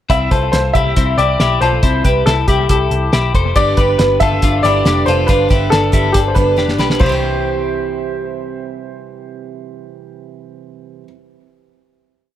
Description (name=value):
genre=jangly indie pop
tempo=139 BPM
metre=4/4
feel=straight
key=C major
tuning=A4 = 440 Hz
part: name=clear upright piano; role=melody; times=0.1-11.0 s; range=G4 to E5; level=-17 LUFS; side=left 1 dB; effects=analog delay
part: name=twelve-string electric guitar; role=arpeggios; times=0.1-8.2 s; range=C4 to C5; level=-19 LUFS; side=left 6 dB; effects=analog delay
part: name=vintage muted picked electric bass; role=bass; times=0.1-11.1 s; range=F1 to C2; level=-18 LUFS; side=equal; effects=none
part: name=cloth-damped thuddy drum kit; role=drums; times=0.1-7.1 s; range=china cymbal, hi-hat, kick drum, snare drum, toms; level=-16 LUFS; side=equal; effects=analog delay
part: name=picked steel-string acoustic guitar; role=accompaniment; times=3.6-11.2 s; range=C3 to C5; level=-23 LUFS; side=right 8 dB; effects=analog delay
room=light reverb, small room ambience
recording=echo-heavy mix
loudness=-12 LUFS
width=side -11 dB against mid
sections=0.1-7.0 verse; 7.0-10.4 final chord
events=drum fill 6.6-7.0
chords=0.1 C; 3.6 Gadd9; 7.0 C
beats=| 0.10 0.53 0.96 1.40 | 1.83 2.26 2.70 3.13 | 3.56 4.00 4.43 4.86 | 5.29 5.72 6.15 6.58 | 7.01 7.43 7.86 8.29 | 8.72 9.15 9.57 10.00